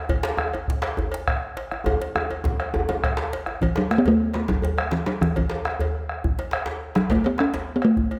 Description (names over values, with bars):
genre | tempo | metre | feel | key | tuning
west african traditional, West African drum ensemble | 137 BPM (dotted quarters) | 12/8 | straight | A major pentatonic | A4 = 443 Hz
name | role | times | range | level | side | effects
bombo | percussion | 0.1-8.1 s | none | -30 LUFS | equal | none
cowbell | percussion | 0.1-8.2 s | none | -37 LUFS | equal | none
djembe | percussion | 0.1-8.2 s | none | -35 LUFS | equal | none
djembe | percussion | 0.2-7.7 s | none | -30 LUFS | equal | none
talking drum | melody | 3.6-8.2 s | E3 to C#4 | -23 LUFS | equal | none
room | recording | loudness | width
moderate recital hall reverb, RT60 1.5 s | close, detailed microphones | -24 LUFS | mono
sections
0.0-3.6 A section; 3.6-8.2 B section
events
drum fill 1.9-3.6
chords
none